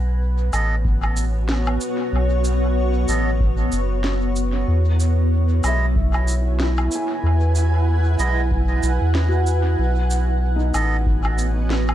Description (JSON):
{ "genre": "ambient dub", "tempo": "94 BPM", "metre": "4/4", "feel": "swing 58% on 16ths", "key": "B mixolydian", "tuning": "A4 = 440 Hz", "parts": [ { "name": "granular cloud pad", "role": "sustained chords", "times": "0.0-11.9 s", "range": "B3 to G#5", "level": "-25 LUFS", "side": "right 1 dB", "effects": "built-in reverb" }, { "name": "soft dub sub bass", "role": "bass", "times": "0.0-11.9 s", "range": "F#1 to E2", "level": "-19 LUFS", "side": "equal", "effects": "tube saturation" }, { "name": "melodica", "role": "stabs", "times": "0.5-11.0 s", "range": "G#3 to D#5", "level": "-30 LUFS", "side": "right 4 dB", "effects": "dub echo" }, { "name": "electronic cabasa, woodblock and snare drum", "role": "drums", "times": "0.5-11.9 s", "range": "none", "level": "-29 LUFS", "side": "equal", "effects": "studio reverb, dub echo" }, { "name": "electronic kick drum", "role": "drums", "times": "0.8-11.2 s", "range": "none", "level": "-24 LUFS", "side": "equal", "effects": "studio reverb" }, { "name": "felt-muted upright piano", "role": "arpeggios", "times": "5.7-11.9 s", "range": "D#4 to G#5", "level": "-30 LUFS", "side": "left 3 dB", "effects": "dub echo" } ], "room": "little or no reverb", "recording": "echo-heavy mix", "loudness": "-17 LUFS", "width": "side -12 dB against mid", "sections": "0.0-11.9 A section", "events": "none", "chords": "0.0 B7(no3); 4.7 E; 9.8 B7" }